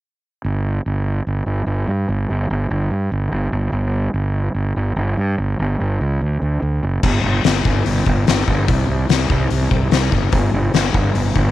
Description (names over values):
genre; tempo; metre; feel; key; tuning
blues rock power trio and southern rock; 146 BPM; 4/4; straight; unclear; A4 = 440 Hz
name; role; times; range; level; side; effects
fuzz fingered electric bass; bass; 0.4-11.5 s; F#1 to G2; -18 LUFS; right 1 dB; overdrive
oversized low-tuned drum kit; drums; 7.0-11.5 s; crash cymbal, hi-hat, kick drum, snare drum; -17 LUFS; left 3 dB; none
room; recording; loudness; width
little or no reverb; 1960s-style stereo; -16 LUFS; side -14 dB against mid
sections
0.4-7.0 A section; 7.0-11.5 B section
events
none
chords
none